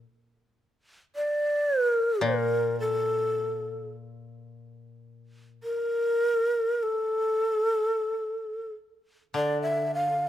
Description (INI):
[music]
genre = japanese traditional, Japanese chamber music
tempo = 46-54 BPM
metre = 4/4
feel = rubato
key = unclear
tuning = A4 = 441 Hz
[part]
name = koto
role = accompaniment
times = 0.0-10.3 s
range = Bb2 to D3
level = -32 LUFS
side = left 3 dB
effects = none
[part]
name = breathy mellow shakuhachi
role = melody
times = 1.2-10.3 s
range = A4 to F5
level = -25 LUFS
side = equal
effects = none
[sound]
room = light reverb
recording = close, detailed microphones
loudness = -24 LUFS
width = side -11 dB against mid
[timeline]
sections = 0.0-9.4 A section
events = none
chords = none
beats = | 0.01 1.14 2.25 3.37 | 4.51 5.65 6.84 8.10 | 9.35